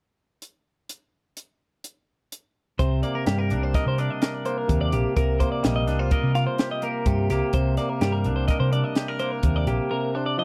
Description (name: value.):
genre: math rock and midwest emo.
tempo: 126 BPM.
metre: 5/4.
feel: straight.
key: C minor.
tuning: A4 = 443 Hz.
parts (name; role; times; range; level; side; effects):
crisp fusion drum kit; drums; 0.4-9.8 s; hi-hat, kick drum, snare drum; -28 LUFS; equal; none.
twangy electric guitar; accompaniment; 2.8-10.4 s; C3 to Bb4; -30 LUFS; equal; none.
twelve-string electric guitar; arpeggios; 2.8-10.4 s; G4 to F5; -31 LUFS; equal; none.
hollow-body short-scale fingered electric bass; bass; 2.8-9.8 s; Bb1 to C3; -26 LUFS; equal; none.
room: small room ambience.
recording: dry, close 1970s-style studio recording.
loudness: -24 LUFS.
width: mono.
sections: 0.4-2.8 A section; 2.8-10.4 B section.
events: none.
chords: 0.4 N.C.; 2.8 Cm9; 5.2 Eb69; 7.5 Cm9; 9.9 Bb/C.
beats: | 0.42 0.89 1.37 1.84 2.32 | 2.79 3.27 3.74 4.21 4.69 | 5.17 5.64 6.12 6.59 7.06 | 7.54 8.01 8.49 8.96 9.44 | 9.91 10.38.